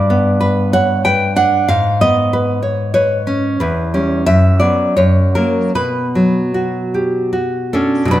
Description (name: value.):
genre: romantic piece for solo classical guitar.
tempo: 73-98 BPM.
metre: 3/4.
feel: rubato.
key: B minor.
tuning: A4 = 440 Hz.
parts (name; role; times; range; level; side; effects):
nylon-string guitar; solo; 0.0-8.2 s; E2 to G5; -12 LUFS; equal; none.
room: moderate recital hall reverb, RT60 1.6 s.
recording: close, detailed microphones.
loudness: -12 LUFS.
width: side -13 dB against mid.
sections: 0.0-8.1 A section.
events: none.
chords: 0.0 G; 1.7 C#5/G#; 3.6 C#m7b5/E; 4.3 Bm/F#; 5.0 F#; 5.7 Bm.